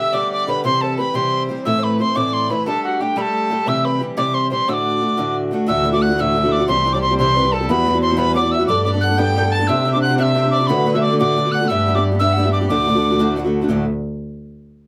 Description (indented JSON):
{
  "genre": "celtic folk, Celtic jig",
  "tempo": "120 BPM (dotted quarters)",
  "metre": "6/8",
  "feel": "straight",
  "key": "D mixolydian",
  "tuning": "A4 = 441 Hz",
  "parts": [
    { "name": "reedy tin whistle", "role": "melody", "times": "0.0-13.3 s", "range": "F#5 to A6", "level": "-22 LUFS", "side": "equal", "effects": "none" },
    { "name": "dark fiddle", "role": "second line", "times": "0.0-13.3 s", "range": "F#4 to A5", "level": "-27 LUFS", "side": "equal", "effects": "none" },
    { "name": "picked steel-string acoustic guitar", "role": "accompaniment", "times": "0.0-13.8 s", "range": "D2 to C5", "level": "-22 LUFS", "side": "equal", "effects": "none" },
    { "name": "muted cello", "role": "bass", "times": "5.7-13.9 s", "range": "C2 to D3", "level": "-23 LUFS", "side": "equal", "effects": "none" }
  ],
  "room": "wet small room ambience, RT60 0.5 s",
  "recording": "heard from further back in the room",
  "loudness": "-18 LUFS",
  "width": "mono",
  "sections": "0.0-5.7 A section; 5.7-13.7 B section; 13.7-14.7 C section",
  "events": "none",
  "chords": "0.0 G/D; 0.6 C; 1.6 Am; 2.7 Gsus2; 3.7 C; 4.7 D; 5.7 Dadd9; 6.7 C; 7.7 Emadd9; 8.7 Gadd9; 9.7 Csus2; 10.7 D6; 11.7 G; 12.7 D",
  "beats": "0.13 | 0.64 1.14 | 1.65 2.15 | 2.66 3.16 | 3.67 4.17 | 4.67 5.18 | 5.68 6.18 | 6.69 7.19 | 7.69 8.19 | 8.69 9.19 | 9.69 10.20 | 10.70 11.20 | 11.70 12.20 | 12.70 13.20 | 13.70"
}